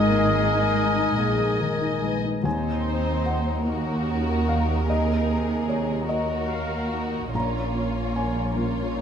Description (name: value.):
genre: cinematic, emotional film score for orchestra.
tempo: 46-51 BPM (dotted quarters).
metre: 6/8.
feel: rubato.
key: Eb dorian.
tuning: A4 = 441 Hz.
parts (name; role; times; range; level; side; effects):
muted symphonic violin section; melody; 0.0-2.2 s; G#5; -30 LUFS; left 8 dB; none.
large flute ensemble; second line; 0.0-1.2 s; G#4; -34 LUFS; left 5 dB; none.
muted symphonic violin section; second line; 0.0-9.0 s; Eb4 to D#5; -31 LUFS; left 3 dB; none.
warm clarinet; second line; 0.0-2.1 s; A#4; -33 LUFS; equal; none.
warm oboe; second line; 0.0-2.1 s; D#5; -30 LUFS; right 5 dB; none.
felt-muted upright piano; accompaniment; 0.0-9.0 s; Bb1 to Bb5; -28 LUFS; left 3 dB; none.
muted symphonic viola section; accompaniment; 0.0-9.0 s; C3 to F5; -33 LUFS; right 1 dB; none.
mellow French horn section; sustained chords; 0.0-2.5 s; G#4 to D#5; -28 LUFS; left 4 dB; none.
muted symphonic cello section; bass; 0.0-9.0 s; Eb2 to G#3; -29 LUFS; right 4 dB; none.
muted symphonic double bass section; bass; 0.0-9.0 s; G#1 to Eb2; -28 LUFS; right 3 dB; none.
room: moderate scoring stage reverb, RT60 1.5 s.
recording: none.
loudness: -22 LUFS.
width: side -8 dB against mid.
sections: 0.0-2.5 A section; 2.5-9.0 B section.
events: none.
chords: 0.0 G#sus2; 2.5 Ebm; 7.3 Bbm.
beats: 1.18 | 2.45 3.67 | 4.89 6.08 | 7.34 8.54.